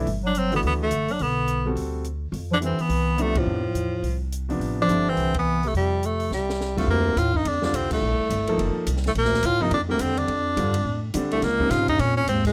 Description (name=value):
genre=modal jazz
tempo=211 BPM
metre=4/4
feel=swing 61% on 8ths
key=Bb major from 6.9 s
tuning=A4 = 439 Hz
part: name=clear grand piano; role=accompaniment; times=0.0-12.0 s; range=C3 to A4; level=-30 LUFS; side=equal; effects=none
part: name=upright bass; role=bass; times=0.0-12.5 s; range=F1 to D3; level=-30 LUFS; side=equal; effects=none
part: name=compact cocktail drum kit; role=drums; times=0.1-12.5 s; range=crash cymbal, hi-hat, kick drum, ride cymbal, snare drum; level=-37 LUFS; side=equal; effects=none
part: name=mellow bass clarinet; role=second line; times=0.2-12.5 s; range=C2 to F#3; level=-30 LUFS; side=equal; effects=none
part: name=clear tenor saxophone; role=melody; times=0.3-12.5 s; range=F3 to F4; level=-26 LUFS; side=equal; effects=none
room=light reverb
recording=close, detailed microphones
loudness=-24 LUFS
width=mono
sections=0.0-6.9 A section; 6.9-12.5 B section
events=band accent 3.3, 5.3, 7.9; drum fill 6.3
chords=0.0 Gmaj9; 2.3 Fmaj9; 6.9 Bbmaj9; 11.4 Dbmaj9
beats=| 0.07 0.35 0.63 0.92 | 1.20 1.48 1.77 2.05 | 2.33 2.62 2.90 3.19 | 3.47 3.75 4.04 4.32 | 4.61 4.89 5.18 5.46 | 5.74 6.03 6.31 6.60 | 6.88 7.17 7.45 7.73 | 8.02 8.30 8.59 8.87 | 9.15 9.44 9.72 10.00 | 10.29 10.57 10.86 11.14 | 11.42 11.71 11.99 12.28